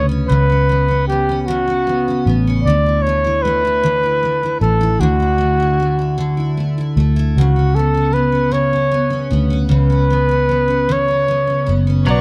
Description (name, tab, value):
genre	pop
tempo	51 BPM (dotted quarters)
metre	6/8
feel	straight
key	B minor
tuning	A4 = 440 Hz
part	breathy flugelhorn	melody	0.0-12.2 s	F#4 to D5	-20 LUFS	equal	none
part	picked steel-string acoustic guitar	accompaniment	0.0-12.2 s	B2 to E4	-22 LUFS	equal	double-tracked
part	vintage muted fingered electric bass	bass	0.0-12.2 s	F#1 to D2	-20 LUFS	equal	none
part	muted studio string section	sustained chords	12.1-12.2 s	B4 to C#6	-25 LUFS	equal	none
part	electric guitar at the edge of break-up	arpeggios	12.1-12.2 s	F#3	-23 LUFS	equal	none
room	light reverb, small room ambience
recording	none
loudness	-16 LUFS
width	mono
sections	0.0-12.2 A section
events	none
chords	0.0 F#sus4/C#; 2.7 Dadd9; 7.4 Bsus2